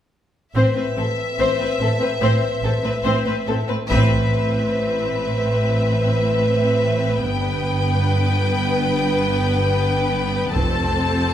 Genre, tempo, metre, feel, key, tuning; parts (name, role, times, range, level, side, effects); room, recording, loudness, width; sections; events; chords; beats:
cinematic, epic orchestral film score; 72 BPM; 4/4; straight; A minor; A4 = 440 Hz
clear symphonic violin section; melody; 0.5-11.3 s; E5 to A5; -26 LUFS; left 3 dB
warm symphonic violin section; second line; 0.6-11.3 s; A4 to C5; -27 LUFS; left 3 dB
warm symphonic viola section; accompaniment; 0.6-11.3 s; B3 to C4; -26 LUFS; equal
mellow French horn section; sustained chords; 0.6-11.3 s; C4 to B4; -25 LUFS; left 1 dB
clear symphonic double bass section; bass; 0.6-11.3 s; F1 to A1; -23 LUFS; right 1 dB
rich symphonic cello section; bass; 0.6-11.3 s; F2 to A2; -24 LUFS; right 2 dB
taiko ensemble; drums; 3.9-5.5, 10.6-11.3 s; -26 LUFS; equal
wet recital hall reverb, RT60 1.4 s; recorded in a church or concert hall; -17 LUFS; side -10 dB against mid
0.6-3.9 A section; 3.9-11.3 B section
build-up 3.9-11.3; band accent 3.9-4.7
0.6 Amadd9; 7.2 G; 10.6 F
| 0.56 1.39 2.22 3.05 | 3.90 4.73 5.57 6.40 | 7.23 8.06 8.89 9.72 | 10.55